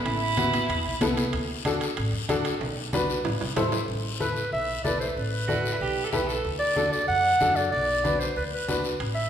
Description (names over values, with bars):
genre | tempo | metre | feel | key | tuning
latin, cumbia | 188 BPM | 4/4 | straight | A dorian | A4 = 440 Hz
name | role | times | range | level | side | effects
bright tenor saxophone | second line | 0.1-1.1, 5.5-6.5 s | E4 to A4 | -29 LUFS | right 3 dB | none
upright bass | bass | 0.1-9.3 s | A1 to F#2 | -32 LUFS | equal | none
congas | percussion | 0.1-9.2 s | none | -36 LUFS | equal | none
guiro | percussion | 0.1-9.3 s | none | -36 LUFS | left 5 dB | none
timbales | percussion | 0.1-3.8, 9.0-9.2 s | none | -34 LUFS | right 4 dB | none
clear upright piano | accompaniment | 0.4-8.9 s | B3 to D5 | -29 LUFS | left 2 dB | none
warm clarinet | melody | 4.2-9.3 s | B4 to F#5 | -25 LUFS | right 1 dB | none
room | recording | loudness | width
wet recital hall reverb, RT60 1.7 s | recorded in a church or concert hall | -23 LUFS | side -9 dB against mid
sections
0.0-3.9 A section; 3.9-9.3 B section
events
tenor saxophone solo 0.0-3.9; drum fill 2.6-3.9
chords
0.0 Asus2; 1.3 D; 2.6 Bm; 3.3 Am; 3.9 Asus2; 6.4 D; 7.7 Bm